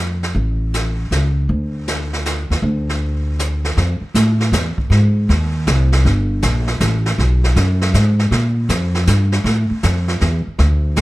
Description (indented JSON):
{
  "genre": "jazz piano trio",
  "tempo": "158 BPM",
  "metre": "3/4",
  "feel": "swing 66% on 8ths",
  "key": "unclear",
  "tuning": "A4 = 442 Hz",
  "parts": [
    { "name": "upright bass", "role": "bass", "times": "0.0-11.0 s", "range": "G1 to Bb2", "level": "-15 LUFS", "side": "equal", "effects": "none" },
    { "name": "jazz brush drum kit", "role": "drums", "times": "0.2-11.0 s", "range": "brushed snare drum, hi-hat, kick drum, snare drum", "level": "-23 LUFS", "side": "right 1 dB", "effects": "none" }
  ],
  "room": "little or no reverb",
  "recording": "none",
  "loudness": "-14 LUFS",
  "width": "side -18 dB against mid",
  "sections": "0.0-3.8 A section; 3.8-11.0 B section",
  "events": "none",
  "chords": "none",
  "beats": "| 0.35 0.73 1.11 | 1.49 1.87 2.25 | 2.63 3.01 3.39 | 3.77 4.15 4.53 | 4.91 5.29 5.67 | 6.05 6.43 6.81 | 7.18 7.56 7.94 | 8.32 8.70 9.08 | 9.46 9.84 10.22 | 10.59 10.97"
}